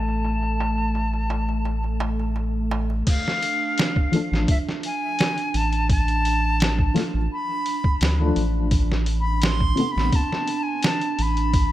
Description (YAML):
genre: trip hop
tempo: 85 BPM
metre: 4/4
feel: straight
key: unclear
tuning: A4 = 440 Hz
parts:
  - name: silver concert flute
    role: melody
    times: 0.0-11.7 s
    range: E5 to C6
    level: -26 LUFS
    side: left 1 dB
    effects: tape echo
  - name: felt-muted upright piano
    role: accompaniment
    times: 0.0-11.7 s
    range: C3 to F4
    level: -26 LUFS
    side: left 3 dB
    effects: tremolo, tape echo
  - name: warbly tape-like pad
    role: sustained chords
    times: 0.0-11.7 s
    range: A3 to A4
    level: -30 LUFS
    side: right 4 dB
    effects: chorus, built-in reverb
  - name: round analog bass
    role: bass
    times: 0.0-11.7 s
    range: A1 to D2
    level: -23 LUFS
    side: equal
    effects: none
  - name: bowed-like drone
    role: texture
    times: 0.0-3.1 s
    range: A3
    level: -38 LUFS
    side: equal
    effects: none
  - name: darbuka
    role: percussion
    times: 0.1-3.0 s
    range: none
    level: -35 LUFS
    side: right 4 dB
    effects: none
  - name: trip hop sampler-style drum kit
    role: drums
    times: 3.1-11.7 s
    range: crash cymbal, hi-hat, kick drum, snare drum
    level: -23 LUFS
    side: equal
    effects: none
room: little or no reverb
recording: low-pass filter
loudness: -20 LUFS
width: side -14 dB against mid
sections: 0.0-3.1 A section; 3.1-11.7 B section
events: filter sweep 0.0-3.1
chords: 0.0 Amadd9; 3.1 Bm7b5/A (rootless); 8.7 Amadd9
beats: | 0.24 0.95 1.66 2.36 | 3.07 3.77 4.48 5.18 | 5.89 6.60 7.30 8.01 | 8.71 9.42 10.13 10.83 | 11.54